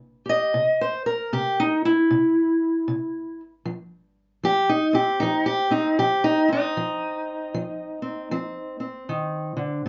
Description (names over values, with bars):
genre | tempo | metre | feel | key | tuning
acoustic country blues, solo or duo | 77 BPM | 4/4 | swing 61% on 8ths | unclear | A4 = 439 Hz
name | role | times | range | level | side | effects
fingerpicked steel-string acoustic guitar | solo | 0.0-9.9 s | C3 to Eb5 | -23 LUFS | equal | none
room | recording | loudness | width
light reverb | nothing above 7.6 kHz | -23 LUFS | mono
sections
0.0-9.9 A section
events
steel-string acoustic guitar solo 0.0-9.9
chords
0.0 C; 3.7 F5